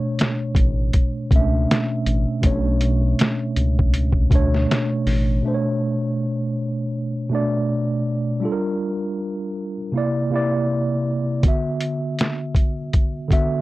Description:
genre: lo-fi hip hop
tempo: 80 BPM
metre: 4/4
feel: swing 56% on 16ths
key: unclear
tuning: A4 = 437 Hz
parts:
  - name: mellow tine electric piano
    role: accompaniment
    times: 0.0-13.6 s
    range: B2 to E5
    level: -21 LUFS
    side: equal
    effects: medium stereo tremolo, cassette tape
  - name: lo-fi sampler-style drum kit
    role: drums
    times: 0.2-5.3, 11.4-13.5 s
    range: hi-hat, kick drum, snare drum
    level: -19 LUFS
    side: equal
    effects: overdrive
  - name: round analog bass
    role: bass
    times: 0.5-5.4 s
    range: A1 to D2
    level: -20 LUFS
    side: equal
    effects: none
room: light reverb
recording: dark, warm production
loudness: -19 LUFS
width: side -18 dB against mid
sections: 0.0-5.4 A section; 5.4-13.6 B section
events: none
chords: 0.0 Bm9; 8.4 Gm7; 9.9 C9; 11.4 D69

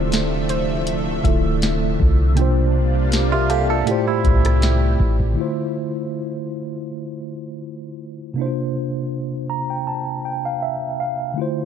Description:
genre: contemporary R&B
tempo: 80 BPM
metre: 4/4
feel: swing 54% on 16ths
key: D minor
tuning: A4 = 441 Hz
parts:
  - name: mellow tine electric piano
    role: accompaniment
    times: 0.0-11.7 s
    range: A2 to Bb5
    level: -22 LUFS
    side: equal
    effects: medium stereo tremolo
  - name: lush unison pad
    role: sustained chords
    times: 0.0-5.4 s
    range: C3 to E5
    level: -26 LUFS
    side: right 1 dB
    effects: chorus, phaser, sidechain pumping
  - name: soft 808-style bass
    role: bass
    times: 0.0-5.4 s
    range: D1 to C2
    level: -20 LUFS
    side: equal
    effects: none
  - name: booming analog drum machine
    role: drums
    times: 0.1-5.4 s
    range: hi-hat, kick drum, rim click, snare drum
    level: -21 LUFS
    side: equal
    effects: none
  - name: soft round pluck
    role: texture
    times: 0.5-4.2 s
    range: C5 to A5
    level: -33 LUFS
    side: right 1 dB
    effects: chorus, ping-pong delay
  - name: direct-recorded clean electric guitar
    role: arpeggios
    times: 3.3-5.2 s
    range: E4 to A4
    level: -26 LUFS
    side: right 8 dB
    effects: spring reverb, ping-pong delay
room: digital ambience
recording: dark, warm production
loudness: -18 LUFS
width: side -8 dB against mid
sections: 0.0-5.4 A section; 5.4-11.7 B section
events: tine electric piano fill 9.1-11.4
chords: 0.0 Dm9; 2.4 C9sus4; 3.9 Am7; 5.4 Dm9; 8.4 C9sus4

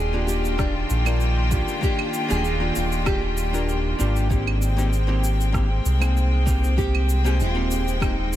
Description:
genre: sunset chillout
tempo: 97 BPM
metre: 4/4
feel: swing 54% on 16ths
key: unclear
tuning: A4 = 440 Hz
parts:
  - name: nylon-string guitar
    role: melody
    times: 0.0-8.4 s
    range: D4 to Ab4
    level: -30 LUFS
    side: equal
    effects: wide subtle chorus, tape echo
  - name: rich chamber string section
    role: sustained chords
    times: 0.0-8.4 s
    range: Eb3 to G5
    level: -28 LUFS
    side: left 1 dB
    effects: none
  - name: round analog bass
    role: bass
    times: 0.0-8.4 s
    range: Eb1 to C2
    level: -22 LUFS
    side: equal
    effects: none
  - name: archtop guitar, miked and amplified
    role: accompaniment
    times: 0.1-8.2 s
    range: Bb3 to Bb4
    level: -29 LUFS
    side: moving between left 4 dB and right 2 dB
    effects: auto-pan, tape echo
  - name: electronic cabasa, rim click and claves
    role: drums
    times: 0.3-8.4 s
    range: none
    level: -34 LUFS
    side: right 3 dB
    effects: none
  - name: electronic kick drum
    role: drums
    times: 0.6-8.1 s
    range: none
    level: -25 LUFS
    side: equal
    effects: none
room: light reverb, small room ambience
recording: none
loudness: -20 LUFS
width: side -12 dB against mid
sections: 0.0-8.4 A section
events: none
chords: 0.0 Ebmaj9; 4.3 Abmaj9

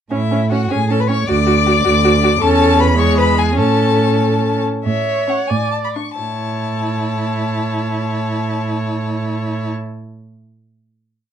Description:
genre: quick classical-period movement for string quartet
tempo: 83-107 BPM (dotted quarters)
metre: 6/8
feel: rubato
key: A major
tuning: A4 = 440 Hz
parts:
  - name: rich violin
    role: melody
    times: 0.1-9.7 s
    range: E5 to D6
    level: -21 LUFS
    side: left 7 dB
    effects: none
  - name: rich violin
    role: second line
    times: 0.1-9.7 s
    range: C#4 to D5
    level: -22 LUFS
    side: left 6 dB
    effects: none
  - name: warm viola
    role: accompaniment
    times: 0.1-9.7 s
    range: G#3 to D5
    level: -20 LUFS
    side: right 2 dB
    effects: none
  - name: warm cello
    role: bass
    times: 0.1-9.7 s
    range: D2 to A2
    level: -18 LUFS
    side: right 3 dB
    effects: none
room: light reverb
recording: dark, warm production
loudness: -14 LUFS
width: side -9 dB against mid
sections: 0.1-4.8 A section; 4.8-6.2 coda; 6.2-8.9 final chord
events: slowing down 3.0-6.2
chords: 0.1 A; 1.3 D; 2.4 A/E; 3.0 E; 3.6 A; 5.5 D5/A; 6.2 A

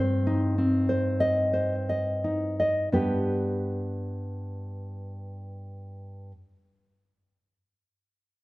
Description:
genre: romantic piece for solo classical guitar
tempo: 41-53 BPM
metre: 3/4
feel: rubato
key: G major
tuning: A4 = 441 Hz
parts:
  - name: nylon-string guitar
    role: solo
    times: 0.0-6.3 s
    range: G2 to Eb5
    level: -25 LUFS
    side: equal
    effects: none
room: moderate recital hall reverb, RT60 1.7 s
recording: nothing above 10.9 kHz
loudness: -24 LUFS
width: side -19 dB against mid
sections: 0.0-2.9 A section; 2.9-6.9 B section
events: slowing down 0.0-2.9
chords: 0.0 Cm/G; 2.9 G

